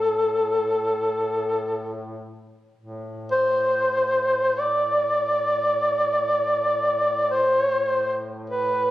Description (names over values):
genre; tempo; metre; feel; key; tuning
caucasian folk, Caucasian lament; free time; none; none; A minor; A4 = 440 Hz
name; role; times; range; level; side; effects
dark duduk; melody; 0.0-8.9 s; A4 to D5; -20 LUFS; equal; none
mellow duduk; drone; 0.0-8.9 s; A2; -35 LUFS; equal; none
room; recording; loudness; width
light reverb; recorded on a phone in the room, studio reverb, compression; -20 LUFS; side -15 dB against mid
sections
0.0-8.9 A section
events
none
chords
none